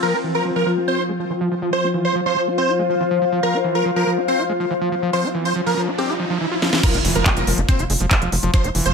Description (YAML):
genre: psychedelic trance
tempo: 141 BPM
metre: 4/4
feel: straight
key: unclear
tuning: A4 = 444 Hz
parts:
  - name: dense compressed supersaw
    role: melody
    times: 0.0-8.9 s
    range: G4 to C5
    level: -23 LUFS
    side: right 1 dB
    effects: phaser, sidechain pumping, ping-pong delay
  - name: overtone-sweeping drone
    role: sustained chords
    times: 0.0-8.9 s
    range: F3 to F4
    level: -25 LUFS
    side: left 2 dB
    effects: chorus, built-in reverb, phaser, sidechain pumping
  - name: overdriven acid bass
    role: riff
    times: 0.0-8.9 s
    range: E3 to G4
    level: -24 LUFS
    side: equal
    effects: distortion, auto-pan, sidechain pumping, tape echo
  - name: granular cloud pad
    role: texture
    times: 0.0-6.4 s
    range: F4 to G5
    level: -25 LUFS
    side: left 2 dB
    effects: built-in reverb, sidechain pumping
  - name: riser and impact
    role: sound effects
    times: 4.8-8.5 s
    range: none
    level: -27 LUFS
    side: right 1 dB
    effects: none
  - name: techno drum kit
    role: drums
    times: 6.6-8.9 s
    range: crash cymbal, handclaps, hi-hat, snare drum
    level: -22 LUFS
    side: right 1 dB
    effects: overdrive, small room ambience
  - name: electronic kick drum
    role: drums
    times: 6.8-8.6 s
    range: none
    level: -17 LUFS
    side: equal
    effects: small room ambience
  - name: tight sequencer bass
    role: bass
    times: 6.9-8.9 s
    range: F1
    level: -21 LUFS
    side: equal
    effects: none
room: moderate digital room reverb, RT60 1.1 s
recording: none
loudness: -17 LUFS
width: side -5 dB against mid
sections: 0.0-6.8 A section; 6.8-8.9 B section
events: filter sweep on acid bass 0.0-6.8; riser 4.8-6.8; drum fill 6.6; drop 6.8-8.9; impact 6.8-8.5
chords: 0.0 F5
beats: | 0.03 0.45 0.88 1.30 | 1.73 2.15 2.58 3.00 | 3.43 3.86 4.28 4.71 | 5.13 5.56 5.98 6.41 | 6.83 7.26 7.68 8.11 | 8.54